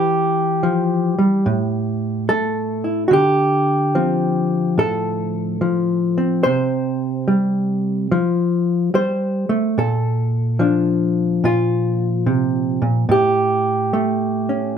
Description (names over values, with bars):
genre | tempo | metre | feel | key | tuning
solo jazz | 72 BPM | 4/4 | swing 66% on 8ths | unclear | A4 = 440 Hz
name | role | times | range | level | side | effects
hollow-body jazz guitar | solo | 0.0-14.8 s | A2 to C5 | -16 LUFS | equal | none
room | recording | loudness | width
wet club reverb, RT60 0.6 s | none | -16 LUFS | side -8 dB against mid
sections
0.0-14.8 A section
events
none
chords
0.0 Em; 1.5 A5; 3.1 Dm7; 6.4 C5; 8.1 F; 9.8 Bbmaj9; 13.1 A7